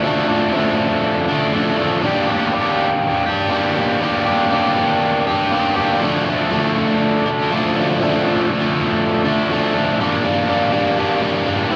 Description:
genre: rock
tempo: 121 BPM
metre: 4/4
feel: straight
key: G minor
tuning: A4 = 440 Hz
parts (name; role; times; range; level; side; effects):
- biting overdriven guitar; solo; 0.0-11.8 s; E3 to G4; -18 LUFS; equal; cassette tape, analog delay
room: moderate small room reverb, RT60 0.5 s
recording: home recording on cassette, small room ambience, faint mains hum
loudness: -18 LUFS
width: mono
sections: 0.0-10.0 A section; 10.0-11.8 B section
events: none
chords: 0.0 Dm; 2.0 Gm; 6.0 Dm; 10.0 Gm

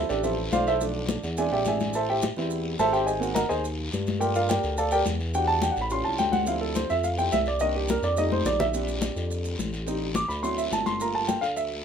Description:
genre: Afro-Cuban jazz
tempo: 212 BPM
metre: 4/4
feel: straight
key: D minor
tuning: A4 = 440 Hz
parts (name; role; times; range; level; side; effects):
- clear concert grand piano; accompaniment; 0.0-11.8 s; Eb3 to D6; -25 LUFS; right 1 dB; none
- smooth synth bass; bass; 0.0-11.8 s; G1 to G2; -30 LUFS; equal; none
- guiro; percussion; 0.1-11.8 s; none; -38 LUFS; left 4 dB; none
- maracas; percussion; 0.1-11.7 s; none; -42 LUFS; right 4 dB; none
- congas; percussion; 0.2-11.8 s; none; -30 LUFS; left 4 dB; none
room: moderate studio reverb, RT60 0.5 s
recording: minimal, uncompressed stereo recording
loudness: -23 LUFS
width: side -7 dB against mid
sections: 0.0-8.7 A section; 8.7-11.8 A section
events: grand piano solo 0.0-11.8; drum fill 8.3-8.7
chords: 0.0 Dm11; 0.8 Bm7b5; 1.4 E7alt; 1.9 Am7; 3.1 G#9; 4.2 Gm9; 5.3 Em9; 5.9 A7alt; 6.5 Dm11; 7.6 Cm7; 8.2 F9; 8.7 Bb6; 9.9 Am7b5; 10.4 D7; 11.0 Gm9

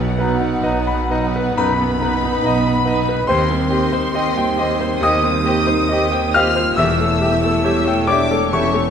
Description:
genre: classical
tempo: 68 BPM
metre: 4/4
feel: rubato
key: unclear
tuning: A4 = 440 Hz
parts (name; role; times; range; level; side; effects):
- clear concert grand piano; melody; 0.0-8.9 s; B1 to F6; -18 LUFS; left 1 dB; none
- rich studio violin section; melody; 0.0-8.9 s; B4 to E5; -30 LUFS; left 5 dB; none
- mellow flute section; second line; 0.0-8.9 s; F#5 to F6; -27 LUFS; left 1 dB; none
- warm studio violin section; second line; 0.0-8.9 s; F#5 to F6; -26 LUFS; left 2 dB; none
- rich studio viola section; accompaniment; 0.0-8.9 s; Eb3 to A4; -28 LUFS; right 2 dB; none
- dark French horn section; sustained chords; 0.0-8.9 s; F#3 to F4; -24 LUFS; left 2 dB; none
- clear studio double bass section; bass; 0.0-8.9 s; E1 to Eb2; -26 LUFS; right 4 dB; none
- warm studio cello section; bass; 0.0-8.9 s; Eb2 to B2; -27 LUFS; right 5 dB; none
- warm clarinet; second line; 0.2-8.7 s; D#4 to G4; -27 LUFS; left 2 dB; none
- warm bassoon; accompaniment; 0.2-8.7 s; A3 to C4; -27 LUFS; right 2 dB; none
room: moderate scoring stage reverb, RT60 2.0 s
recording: none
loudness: -15 LUFS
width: side -7 dB against mid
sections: 0.0-8.9 A section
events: none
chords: 0.0 B; 3.3 Cm/Eb; 6.8 A7/E

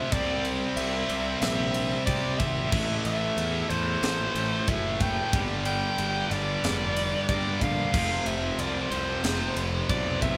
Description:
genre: heavy metal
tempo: 92 BPM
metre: 4/4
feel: straight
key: A minor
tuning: A4 = 440 Hz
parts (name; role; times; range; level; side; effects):
- bright soprano saxophone; melody; 0.0-10.4 s; C5 to G5; -33 LUFS; equal; none
- heavy high-gain guitar; riff; 0.0-10.4 s; F2 to C4; -36 LUFS; equal; distortion
- high-gain distorted guitar; riff; 0.0-10.4 s; F2 to C4; -36 LUFS; equal; distortion
- scooped high-gain guitar; riff; 0.0-10.4 s; F2 to C4; -35 LUFS; equal; distortion
- fuzz picked electric bass; bass; 0.1-10.4 s; F1 to C3; -35 LUFS; equal; overdrive
- tight metal drum kit; drums; 0.1-10.4 s; crash cymbal, kick drum, ride cymbal, snare drum; -34 LUFS; equal; none
room: light reverb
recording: band playing live in one room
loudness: -27 LUFS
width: mono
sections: 0.0-10.4 A section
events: half time 0.0-10.4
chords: 0.1 C; 2.7 Am; 5.3 G5; 7.9 F5

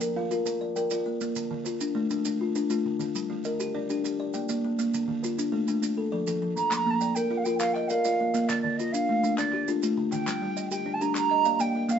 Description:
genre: southern african traditional, mbira-style interlocking cycle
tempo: 135 BPM (dotted quarters)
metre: 12/8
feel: straight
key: Bb major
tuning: A4 = 440 Hz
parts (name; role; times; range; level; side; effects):
- buzzing kalimba; arpeggios; 0.0-12.0 s; D3 to G5; -31 LUFS; right 1 dB; none
- kalimba; arpeggios; 0.0-12.0 s; D3 to Eb5; -28 LUFS; left 3 dB; none
- maracas; percussion; 0.0-12.0 s; none; -39 LUFS; right 7 dB; none
- bright wooden flute; melody; 6.6-12.0 s; D5 to D6; -27 LUFS; right 5 dB; none
- group handclap; percussion; 6.7-12.0 s; none; -36 LUFS; left 2 dB; none
room: light reverb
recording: band playing live in one room, nothing above 7.7 kHz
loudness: -25 LUFS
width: side -8 dB against mid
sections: 0.0-6.7 A section; 6.7-12.0 B section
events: none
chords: 0.0 Bb; 1.4 Dm; 3.1 Gm; 4.0 Bb; 4.9 Dm; 5.8 F; 6.7 Bb; 8.5 Dm; 10.3 G5; 11.2 Bb

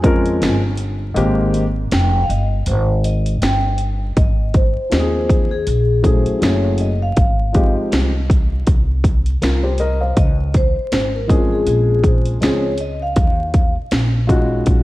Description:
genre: hip hop, jazz-hop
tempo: 80 BPM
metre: 4/4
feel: swing 57% on 16ths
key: Ab major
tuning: A4 = 440 Hz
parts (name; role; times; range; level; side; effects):
- vibraphone with soft mallets; melody; 0.0-13.7 s; Ab4 to Ab5; -23 LUFS; left 2 dB; none
- dark baby grand piano; accompaniment; 0.0-14.8 s; Eb3 to F5; -20 LUFS; left 1 dB; none
- upright bass; bass; 0.0-14.8 s; F1 to F2; -19 LUFS; equal; none
- house drum kit; drums; 0.0-14.8 s; hi-hat, kick drum, snare drum; -17 LUFS; equal; vintage 12-bit sampler grit
room: light reverb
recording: dark, warm production, vinyl crackle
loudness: -14 LUFS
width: side -17 dB against mid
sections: 0.0-4.2 A section; 4.2-14.8 B section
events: vibraphone solo 0.0-4.2; kick muted 1.2-4.2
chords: 0.0 Dbmaj7; 1.2 Abmaj9; 4.2 Ab69; 6.4 Gbm9; 7.2 Fm9/Ab; 10.2 Dbmaj7; 13.2 Ebm11

